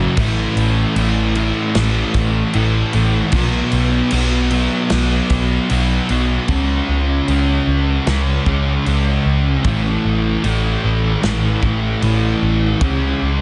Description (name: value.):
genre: rock, shoegaze and dream pop.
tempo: 76 BPM.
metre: 4/4.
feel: straight.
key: unclear.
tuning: A4 = 440 Hz.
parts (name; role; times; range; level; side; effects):
fuzz guitar; riff; 0.0-13.4 s; F#2 to C#4; -20 LUFS; equal; distortion, analog chorus.
vintage muted picked electric bass; bass; 0.0-13.4 s; A1 to C#2; -21 LUFS; equal; none.
loose indie drum kit; drums; 0.2-13.0 s; crash cymbal, kick drum, snare drum; -26 LUFS; equal; none.
room: moderate huge ambient reverb, RT60 4.3 s.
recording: dreamy mix soaked in reverb, nothing above 10.5 kHz.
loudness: -17 LUFS.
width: mono.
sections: 0.0-6.5 A section; 6.5-13.4 B section.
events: none.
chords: 0.2 A5; 3.3 B5; 6.5 C#5; 9.7 A5; 12.8 C#5.